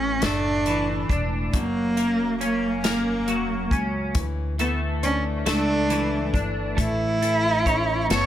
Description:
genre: six-eight pop ballad.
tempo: 46 BPM (dotted quarters).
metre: 6/8.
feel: straight.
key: unclear.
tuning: A4 = 440 Hz.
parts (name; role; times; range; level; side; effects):
rich cello; melody; 0.0-8.3 s; A#3 to C#5; -24 LUFS; right 1 dB; analog delay.
twelve-string electric guitar; accompaniment; 0.0-8.3 s; F#2 to C#5; -27 LUFS; left 1 dB; double-tracked left and right.
upright bass; bass; 0.0-8.3 s; E1 to D2; -28 LUFS; equal; none.
natural country drum kit; drums; 0.2-8.3 s; hi-hat, kick drum, snare drum; -27 LUFS; left 1 dB; none.
fingerpicked plugged-in steel-string acoustic guitar; arpeggios; 4.2-8.3 s; E3 to D4; -33 LUFS; left 7 dB; none.
room: light reverb, small room ambience.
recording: none.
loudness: -21 LUFS.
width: side -11 dB against mid.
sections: 0.0-8.3 A section.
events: none.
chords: 0.0 Asus4; 1.5 F#; 4.2 Dsus2; 6.8 A.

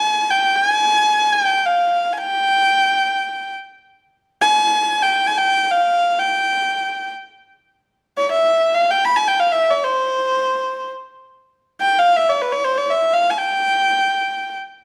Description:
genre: Persian modal ensemble.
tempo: free time.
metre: none.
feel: none.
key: unclear.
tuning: A4 = 439 Hz.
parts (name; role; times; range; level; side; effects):
clear kamancheh; solo; 0.0-14.6 s; B4 to B5; -18 LUFS; equal; none.
room: wet stone room reverb, RT60 1.3 s.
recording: band playing live in one room.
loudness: -17 LUFS.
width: mono.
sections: 0.0-11.4 A section; 11.4-14.8 A section.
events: none.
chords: none.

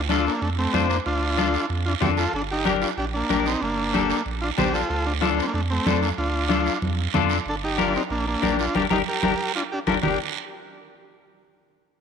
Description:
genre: latin, cumbia.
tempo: 187 BPM.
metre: 4/4.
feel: straight.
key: G minor.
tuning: A4 = 436 Hz.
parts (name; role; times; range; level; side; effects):
warm sub bass; bass; 0.0-10.2 s; G1 to F2; -28 LUFS; right 2 dB; none.
overdriven combo organ; melody; 0.1-10.2 s; A3 to Bb4; -26 LUFS; right 1 dB; none.
semi-hollow electric guitar; accompaniment; 0.1-10.2 s; D4 to C5; -26 LUFS; left 11 dB; analog chorus.
congas; percussion; 0.1-10.1 s; none; -27 LUFS; right 1 dB; none.
guiro; percussion; 0.1-10.1 s; none; -31 LUFS; right 16 dB; none.
room: moderate plate reverb, RT60 2.7 s.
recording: 1960s-style stereo with parts hard left and right.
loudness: -21 LUFS.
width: side -7 dB against mid.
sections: 0.0-10.0 A section; 10.0-11.3 B section.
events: band accent 8.7-10.0.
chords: 0.0 Dm; 2.3 Gm; 4.9 Dm; 7.5 Gm.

